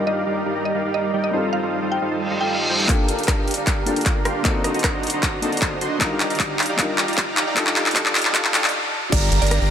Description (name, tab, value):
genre	future bass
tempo	154 BPM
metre	4/4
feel	half-time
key	G minor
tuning	A4 = 440 Hz
part	warm grand piano	accompaniment	0.0-9.1 s	G3 to Bb4	-28 LUFS	left 3 dB	sidechain pumping, tape echo
part	dense compressed supersaw	riff	0.0-9.7 s	G3 to C6	-24 LUFS	right 1 dB	sidechain pumping, low-pass filter
part	mallet-like synth pluck	melody	0.1-2.6, 9.1-9.6 s	D5 to G5	-27 LUFS	right 1 dB	chorus, sidechain pumping, dub echo
part	reverse cymbal, riser and downlifter	sound effects	2.2-9.7 s	none	-29 LUFS	right 1 dB	none
part	big-room dance drum kit	drums	2.9-9.6 s	crash cymbal, handclaps, hi-hat, rim click	-21 LUFS	equal	overdrive, high-pass filter on snare, high-pass filter on hats, high-pass filter on cymbals
part	electronic kick drum	drums	2.9-9.2 s	none	-22 LUFS	equal	overdrive
part	airy dreamy lead	arpeggios	9.1-9.7 s	Bb5	-29 LUFS	right 2 dB	chorus, phaser, sidechain pumping
part	saturated sub bass	bass	9.1-9.7 s	G1	-19 LUFS	equal	sidechain pumping
room	moderate shimmer reverb, RT60 5.5 s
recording	high-pass filter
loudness	-18 LUFS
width	side -9 dB against mid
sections	0.0-2.9 A section; 2.9-9.1 B section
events	reverse cymbal 2.2-2.9; build-up 2.9-9.1; drum fill 2.9-8.7; filter sweep on supersaw synth 2.9-9.1; filter sweep 2.9-9.1; stop 8.7-9.1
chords	0.0 Ebmaj9/G; 1.3 F7/G; 2.9 Gm7; 4.4 D7b9b13; 6.0 Ebmaj9; 7.6 F7; 9.1 Gm7